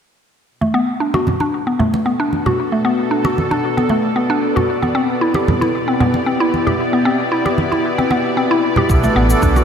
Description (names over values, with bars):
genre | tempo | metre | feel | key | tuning
organic downtempo | 114 BPM | 4/4 | straight | B minor | A4 = 439 Hz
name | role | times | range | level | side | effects
bowed-like drone | sustained chords | 1.5-9.6 s | B2 to D5 | -20 LUFS | left 1 dB | built-in reverb, sidechain pumping
mallet-like synth pluck | arpeggios | 0.6-9.6 s | A3 to G4 | -16 LUFS | left 1 dB | chorus, ping-pong delay
congas | percussion | 0.6-9.6 s | none | -22 LUFS | right 2 dB | none
hand-pumped harmonium | accompaniment | 8.9-9.6 s | E3 to D4 | -19 LUFS | right 2 dB | sidechain pumping
smooth synth bass | bass | 8.9-9.6 s | A1 to B1 | -16 LUFS | equal | tube saturation, sidechain pumping
cabasa | drums | 8.9-9.6 s | none | -31 LUFS | left 2 dB | studio reverb
electronic kick drum | drums | 8.9-9.5 s | none | -17 LUFS | equal | studio reverb
room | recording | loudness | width
wet lush hall reverb, RT60 2.4 s | bright 1980s-style digital production | -14 LUFS | side -7 dB against mid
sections
0.5-9.6 A section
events
filter sweep on synth pluck 0.5-9.6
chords
0.5 Bm7; 4.7 Cmaj7/B; 8.9 Bm7